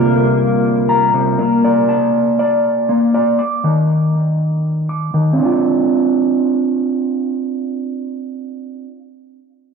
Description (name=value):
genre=hip hop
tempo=120 BPM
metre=4/4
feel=half-time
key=D phrygian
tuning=A4 = 440 Hz
part: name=warbly tape-like pad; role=sustained chords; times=0.0-1.4 s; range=C3 to Bb4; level=-16 LUFS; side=equal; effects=chorus, built-in reverb, low-pass filter
part: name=electric guitar at the edge of break-up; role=arpeggios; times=0.0-9.0 s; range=C3 to D6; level=-14 LUFS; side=right 1 dB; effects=low-pass filter, analog delay
room=light reverb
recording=dry, gritty hardware recording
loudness=-13 LUFS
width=side -5 dB against mid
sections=0.0-5.4 A section; 5.4-9.4 B section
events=filter sweep 0.0-5.4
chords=0.0 C7sus4; 1.4 Bbmaj7; 3.4 N.C.; 5.4 Dm7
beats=0.39 0.89 | 1.39 1.89 2.39 2.89 | 3.39 3.89 4.39 4.89 | 5.39 5.89 6.39 6.89 | 7.39 7.89 8.39 8.89